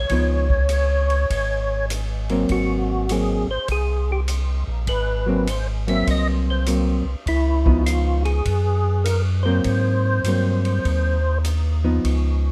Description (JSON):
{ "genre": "soul jazz organ trio", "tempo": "101 BPM", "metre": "4/4", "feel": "swing 66% on 8ths", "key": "unclear", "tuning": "A4 = 440 Hz", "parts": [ { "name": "percussive tonewheel organ", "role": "melody", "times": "0.0-11.4 s", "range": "Fb4 to Fb5", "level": "-27 LUFS", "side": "equal", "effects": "chorus vibrato, slow rotary speaker" }, { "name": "tonewheel organ", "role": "bass", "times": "0.0-12.5 s", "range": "Ab1 to Ab2", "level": "-23 LUFS", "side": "equal", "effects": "overdrive, chorus vibrato" }, { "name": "hollow-body jazz guitar", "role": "accompaniment", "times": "0.1-12.5 s", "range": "F3 to Eb4", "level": "-25 LUFS", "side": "equal", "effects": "none" }, { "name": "vintage drum kit", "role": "drums", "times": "0.1-12.2 s", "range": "hi-hat, kick drum, ride cymbal", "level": "-31 LUFS", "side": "equal", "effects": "none" } ], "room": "little or no reverb", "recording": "close, detailed microphones", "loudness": "-21 LUFS", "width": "mono", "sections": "0.0-12.0 A section", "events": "none", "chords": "0.1 Db9; 2.5 Ab9; 7.3 Db9; 8.5 Gbadd9; 9.6 Ab9" }